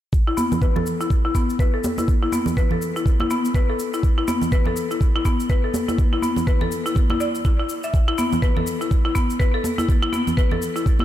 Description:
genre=afro house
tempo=123 BPM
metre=4/4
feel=swing 59% on 16ths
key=unclear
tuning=A4 = 439 Hz
part: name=electronic kick drum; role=drums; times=0.1-11.0 s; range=none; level=-18 LUFS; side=equal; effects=none
part: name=shaker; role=drums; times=0.1-11.0 s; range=none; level=-37 LUFS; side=left 4 dB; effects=none
part: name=buzzing marimba with hard mallets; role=arpeggios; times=0.3-11.0 s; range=B3 to E5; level=-23 LUFS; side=left 2 dB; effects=sidechain pumping, low-pass filter, tape echo
part: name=congas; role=percussion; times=0.4-11.0 s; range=none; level=-27 LUFS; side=right 2 dB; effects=none
room=light reverb, studio reverb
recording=none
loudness=-18 LUFS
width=side -12 dB against mid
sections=0.1-11.0 A section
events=filter sweep on marimba 0.1-11.0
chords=none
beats=| 0.13 0.62 1.11 1.59 | 2.08 2.57 3.06 3.54 | 4.03 4.52 5.01 5.50 | 5.98 6.47 6.96 7.45 | 7.93 8.42 8.91 9.40 | 9.89 10.37 10.86

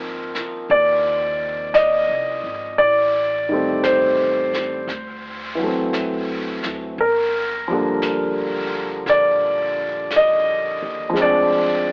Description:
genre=jazz ballad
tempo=57 BPM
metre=4/4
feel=swing 69% on 8ths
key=unclear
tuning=A4 = 438 Hz
part: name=warm grand piano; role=accompaniment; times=0.0-11.9 s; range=D3 to Eb5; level=-20 LUFS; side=equal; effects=none
part: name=upright bass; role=bass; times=0.0-11.9 s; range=G1 to Eb2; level=-42 LUFS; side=equal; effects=none
part: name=vintage brush drum kit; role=drums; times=0.3-11.9 s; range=brushed snare drum, hi-hat, snare drum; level=-34 LUFS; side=equal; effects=none
room=little or no reverb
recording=telephone sound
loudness=-20 LUFS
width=mono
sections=0.0-11.9 A section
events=none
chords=0.0 Ab6; 2.8 Am7b5; 4.9 D7; 7.0 Gm7; 11.2 Dm7b5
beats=0.69 1.74 | 2.78 3.83 4.88 5.92 | 6.97 8.02 9.06 10.11 | 11.15

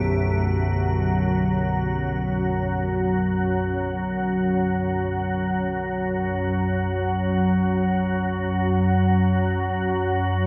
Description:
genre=dark ambient drone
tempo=free time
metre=none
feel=none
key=unclear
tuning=A4 = 442 Hz
part: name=carillon bells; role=arpeggios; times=0.0-4.5 s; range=B2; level=-33 LUFS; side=equal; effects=delay
part: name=organ-like drone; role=drone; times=0.0-10.5 s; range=F#2 to A3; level=-24 LUFS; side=equal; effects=ensemble chorus, built-in reverb
room=moderate plate reverb, RT60 3.0 s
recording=dreamy mix soaked in reverb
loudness=-23 LUFS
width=mono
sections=0.1-10.5 A section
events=none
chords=none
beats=free time

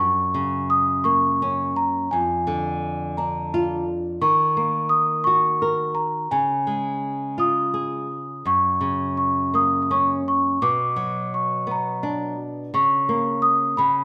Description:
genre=children's music, lullaby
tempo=56 BPM (dotted quarters)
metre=6/8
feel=straight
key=F# major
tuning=A4 = 439 Hz
part: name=large celesta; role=melody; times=0.0-14.0 s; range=G#5 to D#6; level=-23 LUFS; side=equal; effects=none
part: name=flamenco guitar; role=accompaniment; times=0.0-14.0 s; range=E#2 to A#4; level=-29 LUFS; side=equal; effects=none
room=moderate recital hall reverb, RT60 1.4 s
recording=none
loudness=-22 LUFS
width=mono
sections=0.0-14.0 A section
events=none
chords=0.0 F#; 2.1 A#7/E#; 4.2 D#m7; 6.3 C#; 8.5 F#; 10.6 Bm; 12.7 A#madd11/C#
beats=1.04 | 2.12 3.17 | 4.21 5.25 | 6.31 7.38 | 8.46 9.54 | 10.62 11.69 | 12.74 13.79

